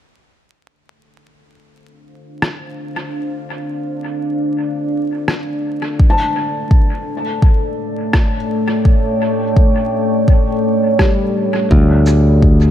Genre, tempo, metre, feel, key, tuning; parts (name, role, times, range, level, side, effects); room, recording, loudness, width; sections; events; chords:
ambient dub; 84 BPM; 4/4; swing 57% on 16ths; D minor; A4 = 440 Hz
deep dark ambient pad; sustained chords; 2.4-12.7 s; A3 to G5; -19 LUFS; equal; chorus, built-in reverb
electronic rim click and shaker; drums; 2.4-12.2 s; -24 LUFS; equal; dub echo
electronic kick drum; drums; 6.0-12.6 s; -12 LUFS; equal
felt-muted upright piano; arpeggios; 6.1-12.7 s; G3 to A5; -22 LUFS; left 3 dB; low-pass filter, tape echo
modern bright fingered electric bass; bass; 11.7-12.7 s; D2; -10 LUFS; equal
light reverb; echo-heavy mix, vinyl crackle; -13 LUFS; side -11 dB against mid
0.3-11.7 A section
0.3 Dm7; 6.0 A7; 11.7 D7(no3)